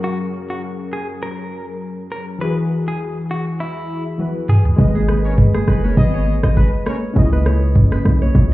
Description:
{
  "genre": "afrobeats",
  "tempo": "101 BPM",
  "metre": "4/4",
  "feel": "swing 55% on 16ths",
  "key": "G# minor",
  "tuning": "A4 = 439 Hz",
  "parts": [
    { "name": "direct-recorded clean electric guitar", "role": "melody", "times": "0.0-4.6 s", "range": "E4 to B4", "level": "-29 LUFS", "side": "equal", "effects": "spring reverb" },
    { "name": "warm analog keys", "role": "accompaniment", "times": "0.0-8.5 s", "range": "C#3 to D#5", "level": "-23 LUFS", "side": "left 2 dB", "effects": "chorus" },
    { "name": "afro-pop drum kit", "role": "drums", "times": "4.2-8.5 s", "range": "kick drum, rim click, shaker, toms", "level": "-16 LUFS", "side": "equal", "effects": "overdrive" },
    { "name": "hard-hitting 808-style bass", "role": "bass", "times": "4.8-8.5 s", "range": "F#1 to C#2", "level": "-16 LUFS", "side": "equal", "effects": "none" },
    { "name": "congas", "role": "percussion", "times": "4.8-8.5 s", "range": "none", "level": "-26 LUFS", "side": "left 1 dB", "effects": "none" },
    { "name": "kora", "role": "riff", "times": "5.0-8.5 s", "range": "G#4 to D#5", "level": "-27 LUFS", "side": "right 2 dB", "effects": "digital delay" },
    { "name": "clear horn section", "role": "second line", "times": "5.2-7.0 s", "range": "G#3 to D#5", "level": "-28 LUFS", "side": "left 2 dB", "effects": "none" }
  ],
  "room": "digital ambience",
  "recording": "heard muffled through a wall, club reverb, EQ, nothing above 10.4 kHz",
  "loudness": "-15 LUFS",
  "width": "side -17 dB against mid",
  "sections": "0.0-8.5 A section",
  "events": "drum fill 4.2-4.8; synth keys fill 8.3",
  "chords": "0.0 F#add9; 2.4 Eadd9; 4.8 G#m; 7.2 C#madd9",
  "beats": "| 0.03 0.63 1.22 1.81 | 2.41 3.00 3.60 4.19 | 4.79 5.38 5.97 6.57 | 7.16 7.75 8.35"
}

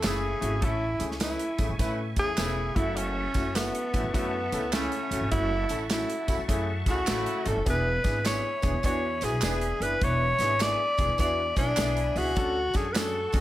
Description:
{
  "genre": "uptempo 1960s-style soul",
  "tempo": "102 BPM",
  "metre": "4/4",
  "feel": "swing 65% on 8ths",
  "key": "unclear",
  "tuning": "A4 = 440 Hz",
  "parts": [
    { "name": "breathy tenor saxophone", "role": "melody", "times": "0.0-13.4 s", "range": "B3 to D5", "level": "-28 LUFS", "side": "equal", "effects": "none" },
    { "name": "warm horn section", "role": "second line", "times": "0.0-13.4 s", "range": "C#3 to G#4", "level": "-36 LUFS", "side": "equal", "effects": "slapback echo" },
    { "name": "clear baby grand piano", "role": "accompaniment", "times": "0.0-13.4 s", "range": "A3 to B4", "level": "-34 LUFS", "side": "left 2 dB", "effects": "none" },
    { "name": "bright tonewheel organ", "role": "sustained chords", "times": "0.0-13.4 s", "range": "E5 to C#6", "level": "-40 LUFS", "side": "equal", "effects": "slow rotary speaker, chorus vibrato" },
    { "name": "upright bass", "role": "bass", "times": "0.0-13.4 s", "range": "E1 to A2", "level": "-32 LUFS", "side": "equal", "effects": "none" },
    { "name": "natural country drum kit", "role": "drums", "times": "0.0-13.4 s", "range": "hi-hat, kick drum, snare drum", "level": "-30 LUFS", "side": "equal", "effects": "none" },
    { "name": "handclaps and tambourine", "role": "percussion", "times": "0.0-13.4 s", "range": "none", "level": "-38 LUFS", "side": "right 5 dB", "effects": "none" }
  ],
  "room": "light reverb",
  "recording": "none",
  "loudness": "-25 LUFS",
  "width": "side -14 dB against mid",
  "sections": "0.0-13.4 A section",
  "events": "none",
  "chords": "0.0 Amaj7; 2.7 F#m7; 7.7 E7; 12.4 Dmaj7",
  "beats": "0.05 | 0.63 1.22 1.80 2.39 | 2.97 3.56 4.15 4.73 | 5.32 5.91 6.50 7.08 | 7.67 8.26 8.85 9.43 | 10.02 10.61 11.20 11.78 | 12.37 12.96"
}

